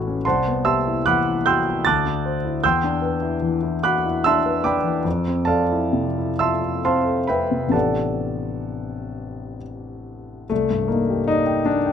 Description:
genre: classical, impressionist solo piano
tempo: 63-78 BPM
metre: 3/4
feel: rubato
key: A dorian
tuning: A4 = 439 Hz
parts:
  - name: warm concert grand piano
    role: solo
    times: 0.0-11.9 s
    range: A1 to A6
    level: -19 LUFS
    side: equal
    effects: none
room: light reverb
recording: close, detailed microphones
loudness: -19 LUFS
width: side -8 dB against mid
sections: 0.0-10.5 A section; 10.5-11.9 B section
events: none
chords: 0.2 Cmaj7; 1.8 D9; 2.6 Em7; 5.1 Fmaj7; 7.7 Am11; 10.5 Cmadd9

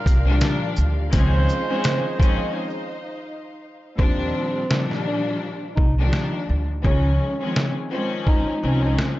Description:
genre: hip hop, boom-bap hip-hop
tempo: 84 BPM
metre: 4/4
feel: swing 59% on 16ths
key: Eb major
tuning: A4 = 438 Hz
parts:
  - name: warm studio string section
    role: accompaniment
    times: 0.0-9.2 s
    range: Bb2 to D4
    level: -26 LUFS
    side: left 2 dB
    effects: high-pass filter, low-pass filter
  - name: warm studio string section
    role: sustained chords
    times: 0.0-4.0 s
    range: Eb4 to F5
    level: -34 LUFS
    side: left 2 dB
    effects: high-pass filter, low-pass filter
  - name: warm horn section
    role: stabs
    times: 0.0-2.5 s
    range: G3 to C5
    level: -30 LUFS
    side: right 5 dB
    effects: high-pass filter, low-pass filter, analog delay
  - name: upright bass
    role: bass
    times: 0.1-9.0 s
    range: C2 to Eb2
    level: -20 LUFS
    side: equal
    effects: none
  - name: trip hop sampler-style drum kit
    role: drums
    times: 0.1-9.2 s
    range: hi-hat, kick drum, shaker, snare drum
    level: -20 LUFS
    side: equal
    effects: none
  - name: breathy tenor saxophone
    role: melody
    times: 4.0-9.0 s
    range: C4 to Eb4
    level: -28 LUFS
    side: equal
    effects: high-pass filter, low-pass filter, analog delay
room: small room ambience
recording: echo-heavy mix, nothing above 7.6 kHz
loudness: -19 LUFS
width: side -16 dB against mid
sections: 0.0-4.0 A section; 4.0-9.2 B section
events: break 2.6-4.0; hi-hats muted 4.0-9.2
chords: 0.0 Ebmaj9; 1.1 Dbmaj9; 4.0 Ebmaj9; 6.8 Dbmaj9

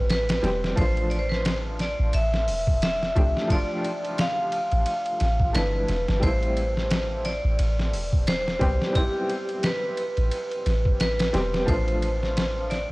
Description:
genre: trip hop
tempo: 88 BPM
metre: 4/4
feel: swing 57% on 16ths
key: A minor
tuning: A4 = 439 Hz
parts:
  - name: vibraphone with hard mallets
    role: melody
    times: 0.0-12.9 s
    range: G4 to F5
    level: -27 LUFS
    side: equal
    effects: dub echo
  - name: felt-muted upright piano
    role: accompaniment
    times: 0.0-12.9 s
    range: F3 to G4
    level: -31 LUFS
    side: equal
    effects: tremolo, vintage 12-bit sampler grit, tape echo
  - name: soft 808-style bass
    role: bass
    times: 0.0-12.9 s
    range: E1 to C2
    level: -26 LUFS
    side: equal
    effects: transformer saturation
  - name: trip hop sampler-style drum kit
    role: drums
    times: 0.1-12.9 s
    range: hi-hat, kick drum, ride cymbal, snare drum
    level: -27 LUFS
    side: equal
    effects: small room ambience
room: digital ambience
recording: dry, gritty hardware recording, cassette tape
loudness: -22 LUFS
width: side -22 dB against mid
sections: 0.0-12.9 A section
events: none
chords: 0.0 Am7; 0.8 Dm; 6.2 Am7; 11.7 Dm

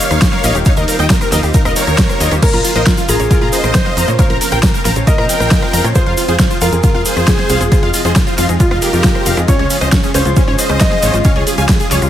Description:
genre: uplifting trance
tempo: 136 BPM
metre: 4/4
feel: straight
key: F minor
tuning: A4 = 439 Hz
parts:
  - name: dense compressed supersaw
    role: melody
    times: 0.0-12.0 s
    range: Db4 to Ab5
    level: -18 LUFS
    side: right 1 dB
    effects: sidechain pumping, dub echo
  - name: lush unison pad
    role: sustained chords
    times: 0.0-12.1 s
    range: C3 to F4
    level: -22 LUFS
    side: equal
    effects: chorus, sidechain pumping
  - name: big-room dance drum kit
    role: drums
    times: 0.0-12.1 s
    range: crash cymbal, hi-hat, ride cymbal, rim click, snare drum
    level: -19 LUFS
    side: right 1 dB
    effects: overdrive, studio reverb
  - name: egg shaker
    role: percussion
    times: 0.0-12.1 s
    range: none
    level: -24 LUFS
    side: equal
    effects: none
  - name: wide unison pluck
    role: arpeggios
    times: 0.1-12.1 s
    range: Db4 to Bb5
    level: -22 LUFS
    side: left 4 dB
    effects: sidechain pumping, dub echo
  - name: tight sequencer bass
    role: bass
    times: 0.1-12.1 s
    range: Eb1 to Bb2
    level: -16 LUFS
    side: equal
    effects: sidechain pumping
  - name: electronic kick drum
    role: drums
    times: 0.2-11.8 s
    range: none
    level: -14 LUFS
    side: equal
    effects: studio reverb
  - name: dark grand piano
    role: second line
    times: 2.4-11.4 s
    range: F4 to Eb5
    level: -20 LUFS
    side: right 1 dB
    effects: dub echo
room: digital ambience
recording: none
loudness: -10 LUFS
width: side -11 dB against mid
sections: 0.0-12.1 A section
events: none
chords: 0.0 Ebadd9; 2.4 Bbm; 6.0 Fm; 9.5 Db

